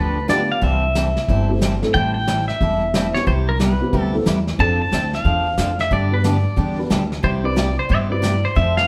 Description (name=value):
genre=country, western swing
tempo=182 BPM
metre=4/4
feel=swing 64% on 8ths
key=C major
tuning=A4 = 438 Hz
part: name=pedal steel guitar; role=melody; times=0.0-8.9 s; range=Bb4 to A5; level=-24 LUFS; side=equal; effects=none
part: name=picked steel-string acoustic guitar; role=accompaniment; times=0.0-8.8 s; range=C3 to A4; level=-26 LUFS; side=equal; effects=none
part: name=upright bass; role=bass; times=0.0-8.9 s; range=E1 to G2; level=-23 LUFS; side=equal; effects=none
part: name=dark upright piano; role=accompaniment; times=0.3-8.2 s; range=A3 to B4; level=-28 LUFS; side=equal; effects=none
part: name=vintage brush drum kit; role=drums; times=0.3-8.9 s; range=brushed snare drum, hi-hat, kick drum, snare drum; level=-27 LUFS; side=equal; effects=none
room=wet studio reverb, RT60 0.8 s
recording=band playing live in one room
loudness=-19 LUFS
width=mono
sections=0.0-8.9 A section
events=none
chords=0.0 G7; 0.6 C6; 1.9 Am7; 3.3 Cmaj7; 4.6 F6; 5.9 G; 7.2 Cmaj7